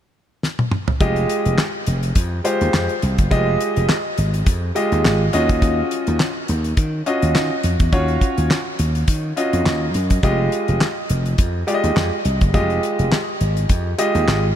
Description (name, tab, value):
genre	early-eighties boogie funk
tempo	104 BPM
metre	4/4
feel	swing 56% on 16ths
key	unclear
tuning	A4 = 440 Hz
part	damped 70s drum kit	drums	0.4-14.4 s	handclaps, hi-hat, kick drum, snare drum, toms	-21 LUFS	equal	none
part	clear concert grand piano	accompaniment	1.0-14.4 s	Ab3 to Eb5	-21 LUFS	equal	none
part	slap bass	bass	1.0-14.5 s	F1 to Eb3	-20 LUFS	equal	none
room	moderate huge ambient reverb, RT60 4.7 s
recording	dreamy mix soaked in reverb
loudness	-16 LUFS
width	side -10 dB against mid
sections	0.0-1.0 A section; 1.0-14.6 B section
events	drum fill 0.4-1.0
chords	0.0 N.C.; 1.0 Fm9; 5.3 Ebm9; 10.2 Fm9